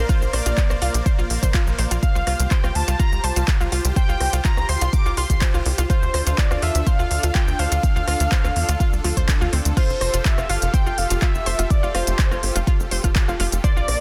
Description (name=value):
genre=progressive house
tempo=124 BPM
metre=4/4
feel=straight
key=F major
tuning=A4 = 440 Hz
part: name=unison lead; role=melody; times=0.0-14.0 s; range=Bb4 to D6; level=-29 LUFS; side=equal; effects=sidechain pumping, digital delay
part: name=supersaw pad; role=sustained chords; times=0.0-14.0 s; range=Bb3 to F5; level=-34 LUFS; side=equal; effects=sidechain pumping
part: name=tight sequencer bass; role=bass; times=0.0-14.0 s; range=F1 to E2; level=-25 LUFS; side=equal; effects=sidechain pumping
part: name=analog pluck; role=arpeggios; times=0.1-13.8 s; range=F3 to C6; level=-32 LUFS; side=equal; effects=chorus, sidechain pumping, digital delay
part: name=deep house drum kit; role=drums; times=0.1-14.0 s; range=crash cymbal, handclaps, hi-hat, rim click, shaker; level=-29 LUFS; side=equal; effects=sidechain pumping on hats, sidechain pumping on perc, sidechain pumping on cymbals
part: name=electronic kick drum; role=drums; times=0.1-13.7 s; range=none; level=-22 LUFS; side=equal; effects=none
room=digital ambience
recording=dense, heavily limited modern master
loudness=-20 LUFS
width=mono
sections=0.0-14.0 A section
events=none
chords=0.0 Bbadd9; 2.0 Csus4; 5.9 Dm; 9.8 Fadd9